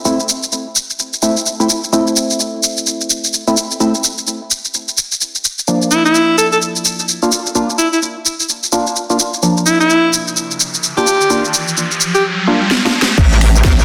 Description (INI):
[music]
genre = bass house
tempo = 128 BPM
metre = 4/4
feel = swing 60% on 16ths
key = unclear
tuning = A4 = 440 Hz
[part]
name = percussive organ stab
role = stabs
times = 0.1-12.9 s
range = F3 to F4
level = -20 LUFS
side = equal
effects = lush chorus, sidechain pumping, tape echo
[part]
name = garage drum kit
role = drums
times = 0.1-13.8 s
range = crash cymbal, finger snaps, hi-hat, shaker, snare drum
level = -18 LUFS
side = equal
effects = overdrive
[part]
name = bright alto saxophone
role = melody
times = 5.9-12.2 s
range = E4 to A4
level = -17 LUFS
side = equal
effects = tape echo
[part]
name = riser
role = sound effects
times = 10.7-13.2 s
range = none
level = -22 LUFS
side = equal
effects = none
[part]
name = metallic wobble bass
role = bass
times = 13.2-13.8 s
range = A1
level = -13 LUFS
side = equal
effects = chorus, overdrive, sidechain pumping
[part]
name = electronic kick drum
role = drums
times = 13.2-13.8 s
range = none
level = -13 LUFS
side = equal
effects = overdrive
[sound]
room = wet digital room reverb, RT60 1.1 s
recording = dense, heavily limited modern master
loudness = -15 LUFS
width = mono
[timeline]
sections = 0.0-13.2 A section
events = riser 10.7-13.2; drum fill 12.7-13.2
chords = 0.0 Am; 5.7 Bb; 13.2 N.C.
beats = | 0.05 0.52 0.99 1.46 | 1.93 2.40 2.87 3.33 | 3.80 4.27 4.74 5.21 | 5.68 6.15 6.62 7.08 | 7.55 8.02 8.49 8.96 | 9.43 9.90 10.37 10.83 | 11.30 11.77 12.24 12.71 | 13.18 13.65